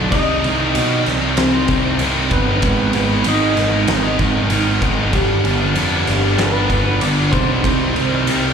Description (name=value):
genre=quiet-loud alternative rock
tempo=96 BPM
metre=4/4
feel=straight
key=C harmonic minor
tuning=A4 = 439 Hz
part: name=fuzz guitar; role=riff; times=0.0-8.5 s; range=G2 to Eb4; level=-22 LUFS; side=right 11 dB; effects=distortion, slapback echo
part: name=heavy high-gain guitar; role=riff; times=0.0-8.5 s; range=G2 to Eb4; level=-22 LUFS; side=left 14 dB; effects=distortion, slapback echo
part: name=fuzz picked electric bass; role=bass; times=0.0-8.5 s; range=G1 to B2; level=-19 LUFS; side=equal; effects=overdrive
part: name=electric guitar through a small old amp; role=melody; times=0.1-8.5 s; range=G3 to Eb5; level=-21 LUFS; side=equal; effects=wide subtle chorus, slapback echo
part: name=oversized low-tuned drum kit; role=drums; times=0.1-8.4 s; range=crash cymbal, kick drum, ride cymbal, snare drum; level=-20 LUFS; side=equal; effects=none
room=small room ambience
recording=live gig heard through the venue's PA, club reverb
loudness=-14 LUFS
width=side -7 dB against mid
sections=0.0-8.5 A section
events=none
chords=0.1 Cm; 2.6 Abm; 5.1 G; 7.6 Cm